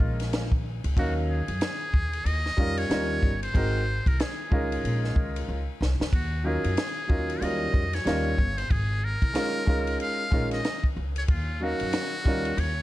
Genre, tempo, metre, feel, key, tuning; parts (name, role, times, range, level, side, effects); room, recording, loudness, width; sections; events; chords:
hip hop, jazz-hop; 93 BPM; 4/4; swing 60% on 16ths; Eb dorian; A4 = 440 Hz
trumpet with metal mute; melody; 0.0-12.8 s; F4 to F5; -32 LUFS; equal
warm concert grand piano; accompaniment; 0.0-12.5 s; Gb3 to F5; -30 LUFS; equal
upright bass; bass; 0.0-12.8 s; G1 to Gb2; -29 LUFS; equal
compact cocktail drum kit; drums; 0.0-12.8 s; hi-hat, kick drum, ride cymbal, snare drum; -28 LUFS; equal
light reverb, small room ambience; -24 LUFS; side -16 dB against mid
0.0-12.8 A section
drum fill 5.5-6.1
0.0 Db69; 1.0 Ebm7; 2.3 Eb7; 2.9 Eb9; 3.5 Ab7; 4.5 Db69; 6.1 Ebm7; 7.4 Eb7; 8.1 Eb9; 8.7 Ab5; 9.7 Db69; 11.3 Ebm7